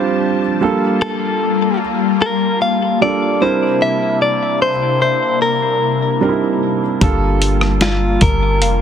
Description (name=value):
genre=contemporary R&B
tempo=75 BPM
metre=4/4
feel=straight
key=G dorian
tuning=A4 = 438 Hz
part: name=direct-recorded clean electric guitar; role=melody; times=0.0-8.8 s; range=F4 to F5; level=-17 LUFS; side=left 2 dB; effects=tremolo, ping-pong delay
part: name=dark grand piano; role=accompaniment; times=0.0-8.8 s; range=G3 to C5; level=-19 LUFS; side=right 5 dB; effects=none
part: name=lush unison pad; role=sustained chords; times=0.0-8.8 s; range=C3 to A5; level=-20 LUFS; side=left 4 dB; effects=chorus, phaser
part: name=soft 808-style bass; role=bass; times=7.0-8.8 s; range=F1 to G1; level=-17 LUFS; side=left 1 dB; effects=none
part: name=dusty soul sampler-style drum kit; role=drums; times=7.0-8.8 s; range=hi-hat, kick drum, rim click, snare drum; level=-16 LUFS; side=equal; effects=none
part: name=mallet-like synth pluck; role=texture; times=7.0-8.8 s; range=F5 to A5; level=-28 LUFS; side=left 4 dB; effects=chorus, ping-pong delay
room=light reverb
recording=dense, heavily limited modern master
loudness=-13 LUFS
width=side -8 dB against mid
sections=0.0-8.8 A section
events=none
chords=0.0 F69; 0.6 Gm9; 3.4 C9; 7.0 Gm9